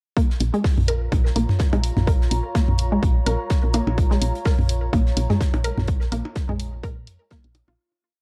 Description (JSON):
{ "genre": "minimal techno", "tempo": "126 BPM", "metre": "4/4", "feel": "swing 55% on 16ths", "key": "Bb minor", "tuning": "A4 = 440 Hz", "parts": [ { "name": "resonant blip pluck", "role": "riff", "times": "0.2-7.7 s", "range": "Ab3 to Bb4", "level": "-30 LUFS", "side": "equal", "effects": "chorus, sidechain pumping, digital delay" }, { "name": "electronic kick drum", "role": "drums", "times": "0.2-7.4 s", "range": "none", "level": "-23 LUFS", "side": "equal", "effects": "overdrive" }, { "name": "loose indie drum kit", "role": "drums", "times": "0.2-7.7 s", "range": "hi-hat, snare drum", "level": "-43 LUFS", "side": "equal", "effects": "sidechain pumping on hats, high-pass filter on hats, high-pass filter on snare, high-pass filter on room" }, { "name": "warbly tape-like pad", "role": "texture", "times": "0.6-7.8 s", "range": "F4 to Bb5", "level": "-36 LUFS", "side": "equal", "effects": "chorus, built-in reverb, sidechain pumping" }, { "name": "woody FM bass", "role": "bass", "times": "0.4-7.8 s", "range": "Bb1 to Bb2", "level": "-26 LUFS", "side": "equal", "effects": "sidechain pumping" }, { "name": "electronic hi-hat", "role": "drums", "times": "0.4-7.7 s", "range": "none", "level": "-32 LUFS", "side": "equal", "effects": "none" }, { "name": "electronic toms and percussion blips", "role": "percussion", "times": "0.8-7.8 s", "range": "none", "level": "-28 LUFS", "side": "equal", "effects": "overdrive" } ], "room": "little or no reverb", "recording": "dark, warm production", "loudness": "-21 LUFS", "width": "mono", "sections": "0.2-7.8 groove", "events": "filter sweep on synth arpeggio sound 0.2-7.8; fade-out 5.2-7.8", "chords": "0.2 Bbm", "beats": "| 0.17 0.64 1.12 1.60 | 2.07 2.55 3.02 3.50 | 3.98 4.45 4.93 5.41 | 5.88 6.36 6.83 7.31" }